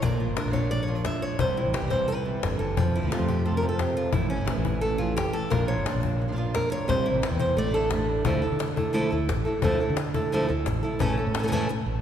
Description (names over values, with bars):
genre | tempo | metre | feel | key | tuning
flamenco | 175 BPM | 4/4 | straight | unclear | A4 = 440 Hz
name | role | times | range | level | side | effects
flamenco guitar | melody | 0.0-11.7 s | A2 to E5 | -26 LUFS | equal | none
flamenco guitar | stabs | 0.0-8.3 s | C3 to F4 | -34 LUFS | right 4 dB | none
fretless electric bass | bass | 0.0-12.0 s | F#1 to D3 | -29 LUFS | equal | none
cajon | percussion | 0.0-12.0 s | none | -30 LUFS | left 4 dB | none
room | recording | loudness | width
wet church reverb, RT60 3.2 s | recorded in a church or concert hall | -23 LUFS | side -9 dB against mid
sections
0.0-8.3 A section; 8.3-12.0 B section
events
nylon-string guitar solo 0.0-8.3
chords
0.0 Bb; 1.4 C; 2.8 F; 4.1 A; 5.5 Bb; 6.9 C; 7.6 Asus4; 8.3 Dmadd9; 11.0 A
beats
| 0.02 0.37 0.71 1.05 | 1.40 1.74 2.08 2.43 | 2.77 3.12 3.46 3.80 | 4.14 4.49 4.83 5.17 | 5.52 5.86 6.20 6.55 | 6.89 7.23 7.58 7.92 | 8.26 8.61 8.95 9.29 | 9.63 9.98 10.32 10.66 | 11.01 11.35 11.69